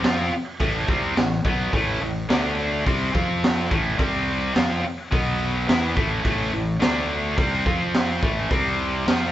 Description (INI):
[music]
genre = classic rock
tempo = 106 BPM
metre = 4/4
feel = straight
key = A minor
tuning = A4 = 439 Hz
[part]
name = tight distorted guitar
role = riff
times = 0.0-9.3 s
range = A2 to F4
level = -23 LUFS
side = equal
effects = distortion
[part]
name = fuzz fingered electric bass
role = bass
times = 0.0-9.3 s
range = A1 to F2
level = -28 LUFS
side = equal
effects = overdrive
[part]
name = raw garage drum kit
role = drums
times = 0.0-9.2 s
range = hi-hat, kick drum, snare drum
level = -24 LUFS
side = equal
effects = none
[sound]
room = light reverb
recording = band playing live in one room, nothing above 7.8 kHz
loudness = -20 LUFS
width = side -13 dB against mid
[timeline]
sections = 0.0-9.3 A section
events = none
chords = 0.0 Am; 2.3 D5; 2.9 C5; 3.1 F5; 3.7 A5; 4.0 C5; 4.6 N.C.; 5.1 B5; 5.7 A5; 6.8 D5; 7.4 C5; 7.7 F5; 8.2 A5; 8.5 C5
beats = 0.04 0.60 1.17 | 1.73 2.30 2.86 3.43 | 3.99 4.56 5.12 5.69 | 6.25 6.82 7.38 7.94 | 8.51 9.07